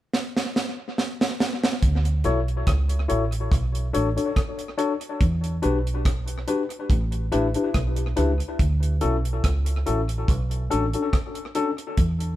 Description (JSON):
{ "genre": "lovers rock reggae", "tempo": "71 BPM", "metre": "4/4", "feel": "swing 54% on 16ths", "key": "D major", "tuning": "A4 = 444 Hz", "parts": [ { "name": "deep reggae drum kit", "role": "drums", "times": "0.1-12.4 s", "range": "hi-hat, kick drum, rim click, snare drum", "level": "-24 LUFS", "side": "right 1 dB", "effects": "tape echo" }, { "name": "deep dub fingered electric bass", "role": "bass", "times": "1.8-12.4 s", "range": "A1 to E2", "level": "-24 LUFS", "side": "right 1 dB", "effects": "none" }, { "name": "tine electric piano", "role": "accompaniment", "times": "2.2-11.7 s", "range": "C#4 to C#5", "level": "-26 LUFS", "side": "left 4 dB", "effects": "tape echo" } ], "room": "moderate studio reverb, RT60 0.8 s", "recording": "band playing live in one room", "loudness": "-21 LUFS", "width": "side -14 dB against mid", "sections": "0.0-1.8 A section; 1.8-12.4 B section", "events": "drum fill 0.1-1.8", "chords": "0.0 N.C.; 1.8 Dmaj7; 3.5 Bm7; 5.2 Em7; 6.9 A7sus4; 8.6 Dmaj7; 10.3 Bm7" }